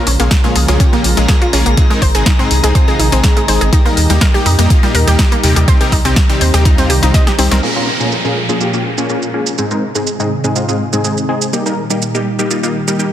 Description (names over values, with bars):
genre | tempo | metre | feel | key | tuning
progressive house | 123 BPM | 4/4 | straight | Bb dorian | A4 = 443 Hz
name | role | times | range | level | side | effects
lush unison pad | sustained chords | 0.0-13.1 s | Bb2 to Ab4 | -21 LUFS | right 1 dB | chorus, sidechain pumping
supersaw stab | stabs | 0.0-13.1 s | Ab2 to Bb4 | -17 LUFS | left 1 dB | sidechain pumping, low-pass filter, tape echo
drifting glass-harmonics texture | texture | 0.6-7.6 s | Bb5 | -26 LUFS | left 2 dB | chorus, built-in reverb, sidechain pumping
analog pluck | arpeggios | 0.1-7.5 s | G3 to Eb5 | -20 LUFS | equal | chorus, cassette tape, sidechain pumping, tape echo
round analog bass | bass | 0.1-7.6 s | Ab1 to F2 | -13 LUFS | equal | sidechain pumping
deep house drum kit | drums | 0.1-13.1 s | crash cymbal, hi-hat, shaker, snare drum | -18 LUFS | equal | overdrive, sidechain pumping on hats, low-pass filter on hats, low-pass filter on snare, sidechain pumping on cymbals, low-pass filter on cymbals, sidechain pumping on perc, low-pass filter on perc, low-pass filter on room
electronic kick drum | drums | 0.3-7.2 s | none | -11 LUFS | equal | overdrive
downlifter | sound effects | 7.6-11.5 s | none | -22 LUFS | right 2 dB | none
room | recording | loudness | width
light reverb | dense, heavily limited modern master | -10 LUFS | side -11 dB against mid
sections
0.0-7.6 A section; 7.6-13.1 B section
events
drum fill 7.1-7.6; filter sweep on supersaw synth 7.6-13.1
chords
0.0 Bbm7; 1.8 Ab; 3.7 Eb; 5.7 Cm; 7.6 Bbm7; 9.6 Ab; 11.5 Eb